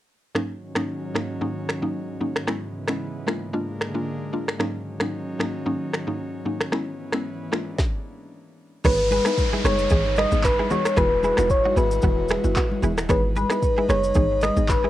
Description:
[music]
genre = afrobeats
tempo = 113 BPM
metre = 4/4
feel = swing 55% on 16ths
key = G# minor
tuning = A4 = 436 Hz
[part]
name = mallet-like synth pluck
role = accompaniment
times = 0.3-14.7 s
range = G#2 to G#4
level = -28 LUFS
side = left 1 dB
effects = chorus, cassette tape
[part]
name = airy breathy pad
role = sustained chords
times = 0.3-14.9 s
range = G#2 to B4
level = -32 LUFS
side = equal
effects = chorus, cassette tape
[part]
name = afro-pop drum kit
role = drums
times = 0.4-14.8 s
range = crash cymbal, finger snaps, handclaps, kick drum, rim click, shaker, snare drum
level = -24 LUFS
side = equal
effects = cassette tape
[part]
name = clean 808-style bass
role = bass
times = 8.8-14.8 s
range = D#1 to G#1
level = -25 LUFS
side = equal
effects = none
[part]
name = congas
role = percussion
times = 8.8-14.9 s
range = none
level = -30 LUFS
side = left 2 dB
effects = none
[part]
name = downlifter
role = sound effects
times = 8.8-13.1 s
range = none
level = -32 LUFS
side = equal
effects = none
[part]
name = soft struck synth lead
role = melody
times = 8.9-14.9 s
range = B4 to D#5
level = -22 LUFS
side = left 1 dB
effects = chorus
[part]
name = direct-recorded clean electric guitar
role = riff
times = 8.9-14.9 s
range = B3 to C#5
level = -31 LUFS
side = right 5 dB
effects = cassette tape, tape echo
[sound]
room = light reverb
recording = home recording on cassette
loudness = -21 LUFS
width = side -14 dB against mid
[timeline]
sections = 0.4-8.8 A section; 8.8-14.9 B section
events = stop 7.8-8.8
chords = 0.4 D#m7/G#; 2.5 C#m7/G#; 3.3 A#7/G#; 4.6 D#m7/G#; 6.7 C#m7/G#; 7.5 A#7/G#; 8.8 G#m; 11.0 Eadd9; 13.1 G#m

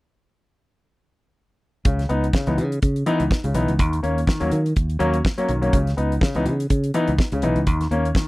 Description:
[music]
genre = disco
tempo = 124 BPM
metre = 4/4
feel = swing 56% on 16ths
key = unclear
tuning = A4 = 442 Hz
[part]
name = clear concert grand piano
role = accompaniment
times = 1.8-8.3 s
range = C#3 to D#4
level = -22 LUFS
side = left 1 dB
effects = none
[part]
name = fingered electric bass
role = bass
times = 1.9-8.1 s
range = B1 to D#3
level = -22 LUFS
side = equal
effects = none
[part]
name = damped 70s drum kit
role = drums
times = 1.9-8.3 s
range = hi-hat, kick drum, snare drum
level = -21 LUFS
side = equal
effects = none
[sound]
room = little or no reverb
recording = dry, close 1970s-style studio recording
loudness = -18 LUFS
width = side -20 dB against mid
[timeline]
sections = 1.9-8.3 A section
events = none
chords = 1.9 C#m7; 3.8 D#m7; 5.7 C#m7; 7.7 D#7(no3)

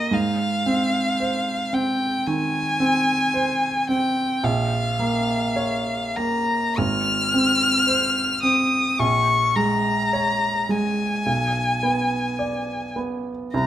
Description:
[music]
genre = classical, romantic duo for violin and grand piano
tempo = 54 BPM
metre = 4/4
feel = uneven beats, rubato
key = unclear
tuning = A4 = 440 Hz
[part]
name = rich violin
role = melody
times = 0.0-13.7 s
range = Eb5 to F6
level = -22 LUFS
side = left 2 dB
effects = none
[part]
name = clear baby grand piano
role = accompaniment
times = 0.0-13.7 s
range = Ab1 to D5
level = -23 LUFS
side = right 2 dB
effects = none
[sound]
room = moderate stone room reverb, RT60 1.2 s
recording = none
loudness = -19 LUFS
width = side -11 dB against mid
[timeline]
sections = 0.0-13.7 A section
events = none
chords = 0.1 Ab; 4.4 Bbm; 6.8 Fm/Ab; 9.0 Bbm7; 11.3 Bm6

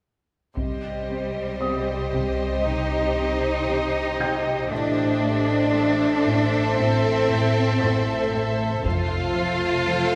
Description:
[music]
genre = cinematic, suspense film score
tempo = 58 BPM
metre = 4/4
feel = straight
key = unclear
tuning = A4 = 442 Hz
[part]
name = rich symphonic violin section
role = melody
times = 0.6-10.2 s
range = Eb5 to F5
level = -34 LUFS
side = equal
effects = none
[part]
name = rich symphonic violin section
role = second line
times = 0.6-10.2 s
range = G4 to C5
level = -31 LUFS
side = equal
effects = none
[part]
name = shimmering ambient pad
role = sustained chords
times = 1.3-10.2 s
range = G4 to F5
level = -32 LUFS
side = equal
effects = chorus, built-in reverb
[part]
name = rich symphonic cello section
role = riff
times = 0.6-10.2 s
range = F2 to C4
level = -32 LUFS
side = equal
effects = none
[part]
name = bright symphonic cello section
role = bass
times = 0.6-10.2 s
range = G3 to F4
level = -27 LUFS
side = equal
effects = none
[part]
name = warm symphonic double bass section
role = bass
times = 0.6-10.2 s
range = F1 to C2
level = -31 LUFS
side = equal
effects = none
[part]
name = taiko ensemble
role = drums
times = 0.6-2.6, 8.8-10.2 s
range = none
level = -35 LUFS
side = equal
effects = none
[part]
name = felt-muted upright piano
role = texture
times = 1.6-10.2 s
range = G5 to A6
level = -36 LUFS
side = equal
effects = none
[sound]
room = wet recital hall reverb, RT60 1.6 s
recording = recorded in a church or concert hall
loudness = -23 LUFS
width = mono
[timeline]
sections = 0.6-10.2 A section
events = none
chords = 0.6 Cm; 4.7 Am; 8.8 F

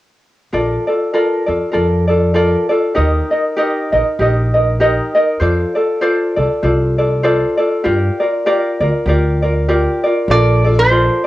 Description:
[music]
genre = Hawaiian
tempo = 98 BPM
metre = 4/4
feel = swing 57% on 8ths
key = Bb major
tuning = A4 = 440 Hz
[part]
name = ukulele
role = accompaniment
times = 0.5-11.3 s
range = Eb4 to Eb5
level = -14 LUFS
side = equal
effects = cassette tape, plate reverb
[part]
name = upright bass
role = bass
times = 0.5-11.1 s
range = Bb1 to G2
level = -16 LUFS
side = equal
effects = tube saturation
[part]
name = metal-body resonator slide guitar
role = melody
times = 10.3-11.3 s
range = C5 to D5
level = -14 LUFS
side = right 2 dB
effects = cassette tape, plate reverb
[sound]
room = wet studio ambience, RT60 0.5 s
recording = home recording on cassette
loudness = -12 LUFS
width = side -16 dB against mid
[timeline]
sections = 0.5-10.3 A section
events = none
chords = 0.5 Bbmaj7; 3.0 Eb; 5.4 F6; 7.8 Gm7; 10.3 Bbmaj7

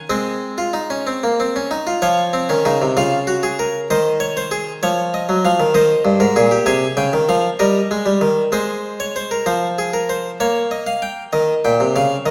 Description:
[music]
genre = classical, baroque-style 3-part fugue for harpsichord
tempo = 64 BPM (dotted quarters)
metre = 6/8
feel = straight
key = Db major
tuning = A4 = 441 Hz
[part]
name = harpsichord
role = solo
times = 0.0-12.3 s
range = G2 to Ab5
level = -18 LUFS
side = equal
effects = none
[sound]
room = wet recital hall reverb, RT60 1.4 s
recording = none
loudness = -18 LUFS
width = mono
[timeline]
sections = 0.0-2.0 A section; 2.0-9.5 B section; 9.5-12.3 A section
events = none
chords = 0.1 Ab; 2.0 Db/F; 3.0 Db6; 3.9 Ab/Eb; 4.8 Db/F; 5.7 Ab; 6.7 Dbmaj9#11/C; 7.6 Eb/G; 8.5 Ab; 9.5 Fm; 10.4 Bbm; 11.3 Eb7

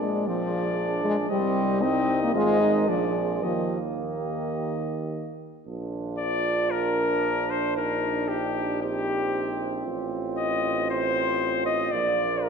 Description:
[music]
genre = classical, brass quintet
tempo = 106-118 BPM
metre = 4/4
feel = rubato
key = Eb major, Bb major from 5.7 s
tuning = A4 = 441 Hz
[part]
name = clear cornet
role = melody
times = 0.0-12.5 s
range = G4 to Eb5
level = -29 LUFS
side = left 6 dB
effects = none
[part]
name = mellow flugelhorn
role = second line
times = 0.0-12.5 s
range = G4 to Eb5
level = -32 LUFS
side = right 6 dB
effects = none
[part]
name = clear trombone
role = accompaniment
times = 0.0-12.5 s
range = Bb3 to F4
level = -32 LUFS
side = right 4 dB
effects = none
[part]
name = warm French horn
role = accompaniment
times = 0.0-12.5 s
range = Eb3 to F4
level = -29 LUFS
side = left 2 dB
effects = none
[part]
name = clear tuba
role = bass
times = 0.0-12.5 s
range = Ab1 to Eb2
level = -32 LUFS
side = right 4 dB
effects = none
[sound]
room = moderate concert hall reverb, RT60 2.2 s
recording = dark, warm production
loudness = -23 LUFS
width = side -6 dB against mid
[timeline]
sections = 0.0-5.7 A section; 5.7-12.5 B section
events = none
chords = 0.0 Bb7; 1.3 Cm; 2.3 Ab; 2.9 Bb7; 3.4 Eb; 5.7 Bb; 7.8 Cm7/Bb; 9.9 F7/A; 11.9 Bb

